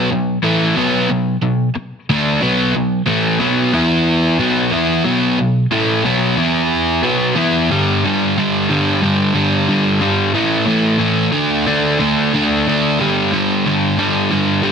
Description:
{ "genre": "rock", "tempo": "91 BPM", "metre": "4/4", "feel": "straight", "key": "B minor", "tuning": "A4 = 440 Hz", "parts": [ { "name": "crunchy overdriven guitar", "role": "solo", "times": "0.0-14.7 s", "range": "G2 to E4", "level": "-13 LUFS", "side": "equal", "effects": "none" } ], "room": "moderate large studio reverb, RT60 1.2 s", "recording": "dense, heavily limited modern master", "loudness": "-13 LUFS", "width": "side -6 dB against mid", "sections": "0.0-7.7 A section; 7.7-14.7 B section", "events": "none", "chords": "0.0 Bm; 3.7 E5; 4.4 B5; 6.4 E5; 7.0 B5; 7.7 G5; 10.3 A5; 11.3 D5; 13.0 G5" }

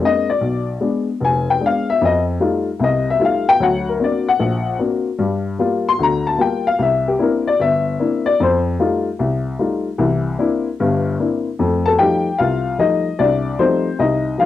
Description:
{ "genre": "solo jazz", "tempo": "150 BPM", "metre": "4/4", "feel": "swing 65% on 8ths", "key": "F mixolydian", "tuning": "A4 = 440 Hz", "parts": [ { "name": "dark upright piano", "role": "solo", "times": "0.0-14.5 s", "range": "F1 to C6", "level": "-15 LUFS", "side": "left 3 dB", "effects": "cassette tape" } ], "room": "moderate studio reverb, RT60 0.5 s", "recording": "home recording on cassette", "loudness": "-15 LUFS", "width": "side -12 dB against mid", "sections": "0.0-11.6 A section; 11.6-14.5 B section", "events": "upright piano solo 0.0-11.6", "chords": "0.4 Bdim7; 2.0 F9; 3.6 Daug7; 5.2 Gm7; 6.8 C9; 8.4 F9; 10.0 C9; 11.6 F9" }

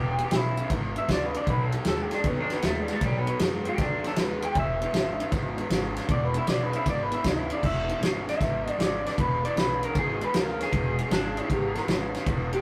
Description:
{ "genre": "electric blues shuffle", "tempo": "156 BPM", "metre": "4/4", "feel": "swing 67% on 8ths", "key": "E mixolydian", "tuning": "A4 = 440 Hz", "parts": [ { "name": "electric guitar through a small old amp", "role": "melody", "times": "0.0-11.9 s", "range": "G3 to G5", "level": "-32 LUFS", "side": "equal", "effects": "none" }, { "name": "raw garage guitar", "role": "riff", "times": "0.0-12.6 s", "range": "E2 to G#3", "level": "-34 LUFS", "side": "equal", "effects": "overdrive" }, { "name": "upright bass", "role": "bass", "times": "0.0-12.5 s", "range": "E1 to F#2", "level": "-35 LUFS", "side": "equal", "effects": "none" }, { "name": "natural country drum kit", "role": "drums", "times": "0.2-12.6 s", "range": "crash cymbal, kick drum, ride cymbal, snare drum", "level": "-31 LUFS", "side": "equal", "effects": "none" }, { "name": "electric slide guitar", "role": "second line", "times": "11.1-12.6 s", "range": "D4 to B4", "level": "-34 LUFS", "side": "equal", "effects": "none" } ], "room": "moderate stone room reverb, RT60 1.2 s", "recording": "rough rehearsal-room recording", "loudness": "-27 LUFS", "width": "mono", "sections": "0.0-7.6 A section; 7.6-12.6 B section", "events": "clean electric guitar solo 0.0-7.6", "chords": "0.0 E7; 1.5 B; 4.6 E" }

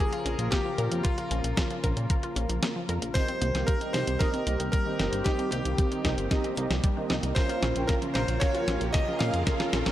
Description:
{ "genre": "italo disco", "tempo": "114 BPM", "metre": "4/4", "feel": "straight", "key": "unclear", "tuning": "A4 = 439 Hz", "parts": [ { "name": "bright electric grand piano", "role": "melody", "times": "0.0-9.9 s", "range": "F4 to F5", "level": "-32 LUFS", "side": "equal", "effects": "analog delay" }, { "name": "lush unison pad", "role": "sustained chords", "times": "0.0-9.9 s", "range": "Db3 to Bb4", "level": "-35 LUFS", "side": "left 1 dB", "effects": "chorus" }, { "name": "wide unison pluck", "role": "arpeggios", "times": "0.0-9.8 s", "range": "Eb3 to Bb4", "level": "-38 LUFS", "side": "left 2 dB", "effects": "tape echo" }, { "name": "clean 12-bit digital drum machine", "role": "drums", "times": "0.1-9.9 s", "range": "hi-hat, snare drum", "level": "-32 LUFS", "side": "equal", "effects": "none" }, { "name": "chorused synth bass", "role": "bass", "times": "0.3-9.9 s", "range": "G1 to Bb2", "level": "-30 LUFS", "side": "equal", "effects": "none" }, { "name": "electronic kick drum", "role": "drums", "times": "0.5-9.6 s", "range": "none", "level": "-27 LUFS", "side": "equal", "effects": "none" }, { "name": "analog synth brass", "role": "stabs", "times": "3.2-9.9 s", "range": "C4 to G5", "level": "-33 LUFS", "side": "right 3 dB", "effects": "chorus" }, { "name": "riser", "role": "sound effects", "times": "6.3-9.9 s", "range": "none", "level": "-41 LUFS", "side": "right 1 dB", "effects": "none" } ], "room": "light reverb", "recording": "dry, gritty hardware recording, faint mains hum", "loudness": "-25 LUFS", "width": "side -13 dB against mid", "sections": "0.0-3.2 A section; 3.2-9.9 B section", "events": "kick drops out 2.6-3.2; drum fill 3.2-9.9; filter sweep on analog polysynth 3.2-9.9", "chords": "0.0 Bbm; 3.2 Cm7; 7.4 Bbm" }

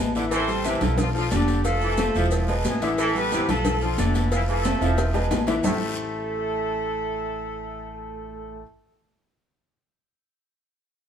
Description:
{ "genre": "latin, salsa", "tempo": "181 BPM", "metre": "4/4", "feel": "straight", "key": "A minor", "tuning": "A4 = 438 Hz", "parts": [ { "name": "bright grand piano", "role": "accompaniment", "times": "0.0-8.6 s", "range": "D3 to F5", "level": "-28 LUFS", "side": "left 2 dB", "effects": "none" }, { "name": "upright bass", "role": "bass", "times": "0.0-8.6 s", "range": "E1 to B1", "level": "-28 LUFS", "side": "right 1 dB", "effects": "none" }, { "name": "brilliant trombone section", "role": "second line", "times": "0.2-5.8 s", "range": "A2 to F3", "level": "-30 LUFS", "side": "right 3 dB", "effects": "none" }, { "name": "guiro", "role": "percussion", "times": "0.2-5.7 s", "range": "none", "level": "-38 LUFS", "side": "left 3 dB", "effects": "none" }, { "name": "maracas", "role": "percussion", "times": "0.2-5.7 s", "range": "none", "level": "-41 LUFS", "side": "right 5 dB", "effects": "none" }, { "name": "dark horn section", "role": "melody", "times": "0.3-8.6 s", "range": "E3 to C5", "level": "-28 LUFS", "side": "equal", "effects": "none" }, { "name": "agogo bells and timbales", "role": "percussion", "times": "0.3-5.7 s", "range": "none", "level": "-33 LUFS", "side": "right 5 dB", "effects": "none" }, { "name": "congas", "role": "percussion", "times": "0.3-5.7 s", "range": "none", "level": "-28 LUFS", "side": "left 1 dB", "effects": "none" }, { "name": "cowbell and bongos", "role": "percussion", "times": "0.3-5.7 s", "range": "none", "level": "-33 LUFS", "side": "left 2 dB", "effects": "none" } ], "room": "moderate stone room reverb, RT60 1.0 s", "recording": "band playing live in one room", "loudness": "-21 LUFS", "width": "side -8 dB against mid", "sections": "0.0-5.6 A section; 5.6-8.3 B section", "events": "drum fill 4.6-5.6", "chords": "0.3 Am7; 1.0 Bm7b5; 1.7 Fmaj7; 2.3 E; 3.0 Am7; 3.6 Bm7b5; 4.3 Fmaj7; 5.0 E; 5.6 Am7" }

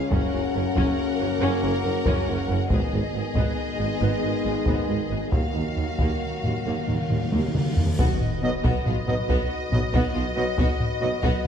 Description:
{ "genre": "cinematic, epic orchestral film score", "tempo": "92 BPM (dotted quarters)", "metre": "12/8", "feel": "straight", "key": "unclear", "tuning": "A4 = 440 Hz", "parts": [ { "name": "warm studio violin section", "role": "melody", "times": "0.0-11.5 s", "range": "Eb5 to Gb5", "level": "-33 LUFS", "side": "left 3 dB", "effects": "none" }, { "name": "rich symphonic violin section", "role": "second line", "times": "0.0-11.5 s", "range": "F4 to Bb4", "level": "-34 LUFS", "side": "left 3 dB", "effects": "none" }, { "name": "clear trombone section", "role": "sustained chords", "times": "0.0-11.1 s", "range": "B2 to Bb3", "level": "-34 LUFS", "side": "right 4 dB", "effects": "none" }, { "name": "dark French horn section", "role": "sustained chords", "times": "0.0-11.1 s", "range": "Bb3 to B4", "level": "-31 LUFS", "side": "left 8 dB", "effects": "none" }, { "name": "rich symphonic viola section", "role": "accompaniment", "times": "0.1-11.5 s", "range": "Bb3 to Db4", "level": "-32 LUFS", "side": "right 1 dB", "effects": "none" }, { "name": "mellow tuba", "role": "bass", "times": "0.1-11.3 s", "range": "Gb1 to Eb2", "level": "-33 LUFS", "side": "right 3 dB", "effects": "none" }, { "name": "rich symphonic cello section", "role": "bass", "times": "0.1-11.3 s", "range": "Eb2 to B2", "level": "-31 LUFS", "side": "right 2 dB", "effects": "none" }, { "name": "rich symphonic double bass section", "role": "bass", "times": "0.1-11.5 s", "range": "Gb1 to Eb2", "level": "-31 LUFS", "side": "right 3 dB", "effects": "none" }, { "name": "solo taiko drums", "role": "drums", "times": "0.1-11.5 s", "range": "none", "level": "-25 LUFS", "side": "left 1 dB", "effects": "none" }, { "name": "timpani", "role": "percussion", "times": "5.3-7.9 s", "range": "Eb3", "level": "-32 LUFS", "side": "equal", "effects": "none" }, { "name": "cymbal swell and impact", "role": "sound effects", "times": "7.0-10.6 s", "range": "none", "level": "-36 LUFS", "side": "left 1 dB", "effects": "none" }, { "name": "mellow woodwind section", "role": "sustained chords", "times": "8.0-11.5 s", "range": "B3 to D#5", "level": "-34 LUFS", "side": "left 3 dB", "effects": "none" }, { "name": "clear trumpet", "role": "stabs", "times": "8.4-11.1 s", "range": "D#5", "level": "-33 LUFS", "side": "right 2 dB", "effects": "none" } ], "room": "moderate scoring stage reverb, RT60 1.7 s", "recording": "dark, warm production", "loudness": "-22 LUFS", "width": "side -8 dB against mid", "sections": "0.0-8.0 A section; 8.0-11.5 B section", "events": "timpani fill 5.3-8.0; cymbal swell 7.0-8.0; drum fill 7.3-8.0; impact 8.0-10.6", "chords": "0.1 Gb; 2.7 Abm; 5.3 Ebmadd9; 8.0 B" }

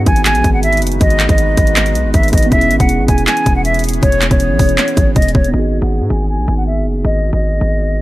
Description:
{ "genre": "hip hop, trap", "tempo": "159 BPM", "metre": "4/4", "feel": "half-time", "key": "G# minor", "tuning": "A4 = 440 Hz", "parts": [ { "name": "hollow concert flute", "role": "melody", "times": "0.0-8.0 s", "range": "C#5 to G#5", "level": "-17 LUFS", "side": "left 1 dB", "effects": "low-pass filter, tape echo" }, { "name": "muted felt-like synth keys", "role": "accompaniment", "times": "0.0-8.0 s", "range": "B3 to G#4", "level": "-20 LUFS", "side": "right 2 dB", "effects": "chorus, low-pass filter" }, { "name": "deep dark ambient pad", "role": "sustained chords", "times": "0.0-5.5 s", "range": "E3 to B4", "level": "-26 LUFS", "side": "right 1 dB", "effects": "chorus, built-in reverb" }, { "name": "hard-hitting 808-style bass", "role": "bass", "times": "0.0-8.0 s", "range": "E1 to G#2", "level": "-16 LUFS", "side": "equal", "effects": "none" }, { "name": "trap drum kit", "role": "drums", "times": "0.1-5.5 s", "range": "handclaps, hi-hat, kick drum", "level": "-14 LUFS", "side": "equal", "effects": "overdrive" } ], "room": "little or no reverb", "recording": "lossy compression artefacts", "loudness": "-11 LUFS", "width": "side -17 dB against mid", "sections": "0.0-5.5 A section; 5.5-8.0 B section", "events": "none", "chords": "0.0 G#m7; 2.5 E6; 5.5 G#m7" }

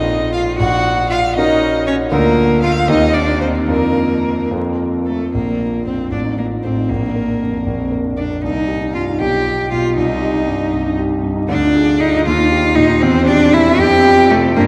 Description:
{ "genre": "quick classical-period movement for piano trio", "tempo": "78 BPM (dotted quarters)", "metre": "6/8", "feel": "rubato", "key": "Bb major", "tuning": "A4 = 440 Hz", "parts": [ { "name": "dark violin", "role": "melody", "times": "0.0-14.6 s", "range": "A4 to G5", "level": "-24 LUFS", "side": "equal", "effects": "none" }, { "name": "rich cello", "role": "second line", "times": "0.0-14.6 s", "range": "A3 to G4", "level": "-18 LUFS", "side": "equal", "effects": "none" }, { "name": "warm concert grand piano", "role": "accompaniment", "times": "0.0-14.7 s", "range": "A1 to Bb4", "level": "-20 LUFS", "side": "equal", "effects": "none" } ], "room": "wet cathedral reverb, RT60 5.2 s", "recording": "in a vast, echoing space, vinyl crackle", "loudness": "-15 LUFS", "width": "mono", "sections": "0.0-5.3 A section; 5.3-14.7 B section", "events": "none", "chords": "0.0 F7/Bb; 0.6 Gb/Bb; 2.1 Bb/D; 2.9 Cm7/Eb; 3.7 Bb/F; 4.5 F; 5.3 Bb; 6.1 F7/A; 6.9 Bb; 8.4 Cm; 9.2 G7/B; 10.0 Cm; 11.5 Ddim; 12.3 Eb; 13.0 C/E; 13.8 F5" }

